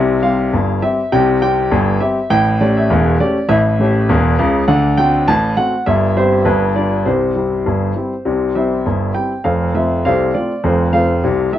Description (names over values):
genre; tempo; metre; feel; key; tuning
ragtime piano; 101 BPM; 2/4; swing 59% on 16ths; C major; A4 = 435 Hz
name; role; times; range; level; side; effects
warm grand piano; solo; 0.0-11.6 s; E1 to A5; -13 LUFS; equal; none
room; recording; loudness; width
moderate studio reverb, RT60 0.6 s; worn, warbling old tape, cassette tape, warbly pitch drift, nothing above 10.4 kHz; -13 LUFS; side -12 dB against mid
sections
0.0-9.4 A section; 9.4-11.6 B section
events
none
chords
0.0 C5; 2.3 A7; 4.7 D7; 5.9 C/G; 6.5 G7; 7.1 C; 9.4 F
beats
0.53 | 1.12 1.71 | 2.31 2.90 | 3.49 4.09 | 4.68 5.27 | 5.86 6.46 | 7.05 7.65 | 8.25 8.85 | 9.44 10.04 | 10.63 11.22